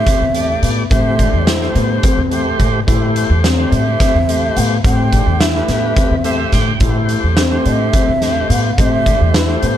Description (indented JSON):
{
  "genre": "progressive instrumental, band music in an uneven meter",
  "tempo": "213 BPM (eighths)",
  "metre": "7/8",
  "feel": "straight",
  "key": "A minor",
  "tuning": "A4 = 439 Hz",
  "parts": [
    { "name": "breathy mellow shakuhachi", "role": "melody", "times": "0.0-9.8 s", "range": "C5 to G5", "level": "-21 LUFS", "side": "right 2 dB", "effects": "ping-pong delay" },
    { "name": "tonewheel organ", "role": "accompaniment", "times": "0.0-9.8 s", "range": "A3 to G5", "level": "-21 LUFS", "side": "equal", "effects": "overdrive, slow rotary speaker" },
    { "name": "dark baby grand piano", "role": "arpeggios", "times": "0.1-9.8 s", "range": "B3 to E4", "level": "-21 LUFS", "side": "left 6 dB", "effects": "none" },
    { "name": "oversized low-tuned drum kit", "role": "drums", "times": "0.1-9.8 s", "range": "hi-hat, kick drum, snare drum", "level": "-17 LUFS", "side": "equal", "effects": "none" },
    { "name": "upright bass", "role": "bass", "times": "0.2-9.8 s", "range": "E2 to A2", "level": "-17 LUFS", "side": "equal", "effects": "none" }
  ],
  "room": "light reverb",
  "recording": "dark, warm production",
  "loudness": "-12 LUFS",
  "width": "side -11 dB against mid",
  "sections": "0.0-9.8 A section",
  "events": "tonewheel organ fill 6.0-6.8",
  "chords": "0.0 Am7",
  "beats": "0.07 0.35 0.63 | 0.91 1.19 1.47 1.75 2.03 2.32 2.60 | 2.88 3.16 3.44 3.72 4.00 4.29 4.57 | 4.85 5.13 5.41 5.69 5.97 6.25 6.53 | 6.82 7.10 7.38 7.66 7.94 8.22 8.50 | 8.78 9.06 9.35 9.63"
}